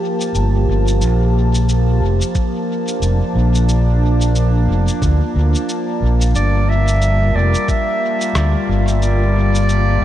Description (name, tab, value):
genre	ambient dub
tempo	90 BPM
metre	4/4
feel	swing 58% on 16ths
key	G dorian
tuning	A4 = 441 Hz
part	warbly tape-like pad	sustained chords	0.0-10.0 s	F3 to A5	-20 LUFS	equal	chorus, built-in reverb
part	electronic shaker and rim click	drums	0.2-9.8 s	none	-27 LUFS	left 1 dB	studio reverb, dub echo
part	overdriven fingered electric bass	bass	0.3-10.0 s	F1 to D2	-14 LUFS	equal	none
part	electronic kick drum	drums	2.4-7.8 s	none	-19 LUFS	equal	studio reverb
part	clear clarinet	melody	6.4-10.0 s	D5 to E5	-20 LUFS	right 1 dB	dub echo
room	moderate huge ambient reverb, RT60 7.4 s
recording	dreamy mix soaked in reverb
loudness	-14 LUFS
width	side -12 dB against mid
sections	0.0-10.0 A section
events	none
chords	0.0 Gm9; 1.0 Bbmaj7